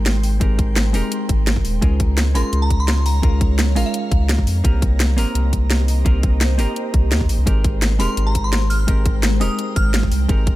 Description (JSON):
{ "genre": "liquid drum and bass", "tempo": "170 BPM", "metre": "4/4", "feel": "straight", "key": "Ab major", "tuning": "A4 = 441 Hz", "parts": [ { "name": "hollow-body jazz guitar", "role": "accompaniment", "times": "0.0-10.6 s", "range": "Ab3 to Bb4", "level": "-26 LUFS", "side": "equal", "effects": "tape echo" }, { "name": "ethereal airy pad", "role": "sustained chords", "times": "0.0-10.6 s", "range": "Ab3 to C6", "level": "-29 LUFS", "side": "equal", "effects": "ensemble chorus, built-in reverb, phaser, sidechain pumping" }, { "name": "warm sub bass", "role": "bass", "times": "0.0-10.6 s", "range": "Eb1 to F2", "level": "-18 LUFS", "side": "equal", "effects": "none" }, { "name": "drum and bass drum kit", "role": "drums", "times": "0.1-10.5 s", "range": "hi-hat, snare drum", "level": "-23 LUFS", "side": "equal", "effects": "overdrive" }, { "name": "electronic kick drum", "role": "drums", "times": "0.4-10.5 s", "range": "none", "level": "-18 LUFS", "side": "equal", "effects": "overdrive" }, { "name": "glassy synth bell", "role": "melody", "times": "2.4-4.3, 8.0-10.0 s", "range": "F5 to F6", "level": "-27 LUFS", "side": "equal", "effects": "chorus, digital delay" } ], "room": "digital ambience", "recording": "none", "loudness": "-15 LUFS", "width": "side -16 dB against mid", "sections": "0.0-10.6 A section", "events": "none", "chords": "0.0 Abmaj9; 1.8 Db6; 4.6 Cm7; 7.5 Abmaj9", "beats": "0.06 | 0.41 0.76 1.12 1.47 | 1.82 2.17 2.53 2.88 | 3.23 3.59 3.94 4.29 | 4.64 5.00 5.35 5.70 | 6.06 6.41 6.76 7.12 | 7.47 7.82 8.18 8.53 | 8.88 9.23 9.59 9.94 | 10.29" }